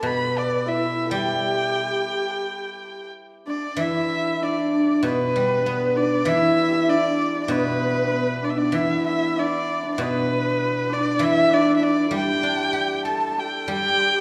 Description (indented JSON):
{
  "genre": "chinese traditional, Chinese chamber ensemble",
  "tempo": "97 BPM",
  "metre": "2/4",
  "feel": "rubato",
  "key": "G gong mode",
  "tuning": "A4 = 440 Hz",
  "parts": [
    { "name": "rich erhu", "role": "melody", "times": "0.0-14.2 s", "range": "B4 to B5", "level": "-27 LUFS", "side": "equal", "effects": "none" },
    { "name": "breathy mellow low xiao", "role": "second line", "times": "0.0-14.2 s", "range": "D4 to B4", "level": "-28 LUFS", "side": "equal", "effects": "none" },
    { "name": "hammered dulcimer", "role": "second line", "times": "0.0-14.2 s", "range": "B3 to B4", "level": "-28 LUFS", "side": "equal", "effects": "none" },
    { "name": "guzheng", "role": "accompaniment", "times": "0.0-14.2 s", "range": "B2 to A4", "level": "-30 LUFS", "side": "equal", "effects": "none" }
  ],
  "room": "wet recital hall reverb, RT60 1.4 s",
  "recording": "recorded in a church or concert hall",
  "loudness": "-22 LUFS",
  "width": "mono",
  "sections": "0.0-3.8 A section; 3.8-13.7 B section",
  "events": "none",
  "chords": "none",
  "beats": "| 0.05 0.67 | 1.28 1.90 | 2.51 3.15 | 3.79 4.43 | 5.05 5.66 | 6.27 6.88 | 7.50 8.11 | 8.74 9.38 | 10.00 10.61 | 11.21 11.82 | 12.44 13.06 | 13.71"
}